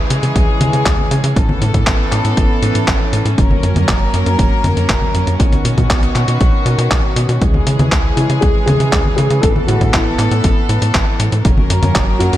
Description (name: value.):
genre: italo disco.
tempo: 119 BPM.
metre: 4/4.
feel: straight.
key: unclear.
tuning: A4 = 439 Hz.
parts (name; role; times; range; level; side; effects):
rich studio string section; sustained chords; 0.0-12.4 s; D#3 to A#4; -19 LUFS; equal; vintage 12-bit sampler grit.
tight sequencer bass; bass; 0.0-12.4 s; F#1 to C#3; -16 LUFS; equal; none.
clean 12-bit digital drum machine; drums; 0.1-12.4 s; congas, handclaps, hi-hat; -20 LUFS; left 1 dB; none.
electronic kick drum; drums; 0.4-12.1 s; none; -16 LUFS; equal; none.
dark grand piano; melody; 8.2-12.4 s; E4 to A4; -20 LUFS; left 1 dB; ping-pong delay.
room: light reverb.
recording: none.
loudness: -12 LUFS.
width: side -13 dB against mid.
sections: 0.0-12.4 A section.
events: none.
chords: 0.0 C#m; 1.4 Aadd9; 3.4 F#; 5.4 Badd9; 7.4 C#m; 9.4 Aadd9; 11.4 F#.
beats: 0.36 0.86 | 1.37 1.87 2.37 2.88 | 3.38 3.89 4.39 4.89 | 5.40 5.90 6.41 6.91 | 7.42 7.92 8.43 8.93 | 9.43 9.94 10.44 10.95 | 11.45 11.95.